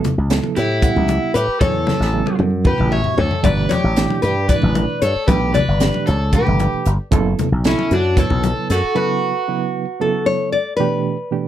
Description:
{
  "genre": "electric jazz fusion",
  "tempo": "229 BPM (eighths)",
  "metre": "7/8",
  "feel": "straight",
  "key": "B minor",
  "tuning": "A4 = 438 Hz",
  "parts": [
    { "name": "barky reed electric piano", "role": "accompaniment", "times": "0.0-11.5 s", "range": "B2 to F#5", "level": "-23 LUFS", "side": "right 8 dB", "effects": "overdrive, tremolo" },
    { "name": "crisp fusion drum kit", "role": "drums", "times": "0.0-8.8 s", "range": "hi-hat, kick drum, snare drum, toms", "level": "-20 LUFS", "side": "equal", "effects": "none" },
    { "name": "congas", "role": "percussion", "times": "0.0-8.6 s", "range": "none", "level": "-23 LUFS", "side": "left 4 dB", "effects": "none" },
    { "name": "slap bass with an envelope filter", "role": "bass", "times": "0.2-8.9 s", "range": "F#1 to A2", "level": "-18 LUFS", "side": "equal", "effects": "none" },
    { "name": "nylon-string guitar", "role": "melody", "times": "0.6-11.5 s", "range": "E4 to E5", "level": "-21 LUFS", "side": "left 4 dB", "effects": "none" },
    { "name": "overdriven semi-hollow guitar", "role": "second line", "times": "0.6-10.2 s", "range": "C#4 to C#5", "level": "-23 LUFS", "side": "right 2 dB", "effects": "none" }
  ],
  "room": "little or no reverb",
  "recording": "none",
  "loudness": "-15 LUFS",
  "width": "side -11 dB against mid",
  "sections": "0.0-10.8 A section",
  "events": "drum fill 1.9-3.4; break 9.0-10.8",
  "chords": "0.0 A13; 3.4 Em7/G; 7.1 F#m7; 9.0 Bsus2; 10.8 Asus2",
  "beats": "0.05 0.31 0.57 0.83 1.09 1.35 | 1.61 1.88 2.14 2.40 2.66 2.92 3.18 | 3.45 3.71 3.97 4.23 4.49 4.76 5.02 | 5.28 5.54 5.81 6.07 6.33 6.59 6.86 | 7.12 7.38 7.64 7.91 8.17 8.43 8.70 | 8.96 9.22 9.48 9.75 10.01 10.27 10.54 | 10.80 11.06 11.32"
}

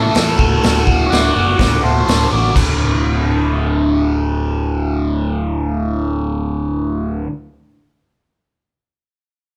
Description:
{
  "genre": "garage rock duo or trio",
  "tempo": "124 BPM",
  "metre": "4/4",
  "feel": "straight",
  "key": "D major",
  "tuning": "A4 = 440 Hz",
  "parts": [
    { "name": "overdriven combo organ", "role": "melody", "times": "0.0-2.6 s", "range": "A3 to D5", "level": "-22 LUFS", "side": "equal", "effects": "none" },
    { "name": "overdriven electric guitar", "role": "riff", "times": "0.0-7.3 s", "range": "D2 to A4", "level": "-20 LUFS", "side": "equal", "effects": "phaser" },
    { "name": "picked electric bass", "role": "bass", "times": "0.0-7.2 s", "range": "D1 to E2", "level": "-22 LUFS", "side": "equal", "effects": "none" },
    { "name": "raw garage drum kit", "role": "drums", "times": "0.1-2.7 s", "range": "crash cymbal, hi-hat, kick drum, snare drum", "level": "-20 LUFS", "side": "equal", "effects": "none" }
  ],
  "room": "light reverb",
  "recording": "band playing live in one room",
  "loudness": "-16 LUFS",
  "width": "mono",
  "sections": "0.0-2.6 A section; 2.6-6.5 B section",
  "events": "transistor combo organ solo 0.0-2.6",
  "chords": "0.4 D; 2.6 D5",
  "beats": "0.14 | 0.63 1.11 1.59 2.08 | 2.56 3.05 3.53 4.02 | 4.51 4.99 5.48 5.97"
}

